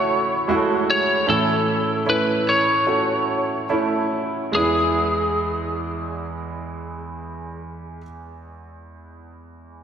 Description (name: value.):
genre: pop.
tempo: 70-78 BPM.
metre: 4/4.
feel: straight.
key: E major.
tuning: A4 = 440 Hz.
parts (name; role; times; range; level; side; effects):
lightly driven lead guitar; melody; 0.0-8.0 s; G#4 to C#5; -21 LUFS; left 1 dB; none.
bright grand piano; accompaniment; 0.0-9.8 s; E2 to A4; -23 LUFS; right 2 dB; lush chorus.
room: wet lush hall reverb, RT60 3.1 s.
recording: dreamy mix soaked in reverb.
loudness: -18 LUFS.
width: side -8 dB against mid.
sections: 0.0-4.5 A section; 4.5-8.0 B section.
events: slowing down 0.0-4.5.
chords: 0.0 F#m7; 1.3 A; 4.5 E.